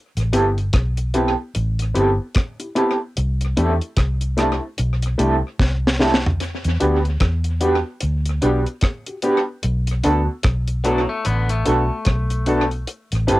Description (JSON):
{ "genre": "lovers rock reggae", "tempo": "74 BPM", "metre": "4/4", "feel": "swing 59% on 16ths", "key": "E minor", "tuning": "A4 = 440 Hz", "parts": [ { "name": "vintage muted fingered electric bass", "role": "bass", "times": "0.2-13.4 s", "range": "G1 to E2", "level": "-20 LUFS", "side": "equal", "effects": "none" }, { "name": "deep reggae drum kit", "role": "drums", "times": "0.2-13.4 s", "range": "hi-hat, kick drum, rim click, snare drum, toms", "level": "-21 LUFS", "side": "equal", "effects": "cassette tape, tape echo" }, { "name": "dark grand piano", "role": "accompaniment", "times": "0.3-13.4 s", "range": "A3 to B4", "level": "-21 LUFS", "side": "left 2 dB", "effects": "cassette tape" }, { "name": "electric guitar through a small old amp", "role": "stabs", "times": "0.3-13.4 s", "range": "C4 to B4", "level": "-21 LUFS", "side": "right 3 dB", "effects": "tremolo, cassette tape" }, { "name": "twangy electric guitar", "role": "arpeggios", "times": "10.9-12.7 s", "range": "A2 to B3", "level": "-26 LUFS", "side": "left 3 dB", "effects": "spring reverb, cassette tape" } ], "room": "light reverb", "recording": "home recording on cassette", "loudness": "-18 LUFS", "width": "side -18 dB against mid", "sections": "0.0-13.4 A section", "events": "drum fill 5.6-6.4", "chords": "0.0 Am7; 3.2 C6; 6.4 Em7; 9.6 Bm7; 12.9 Am7" }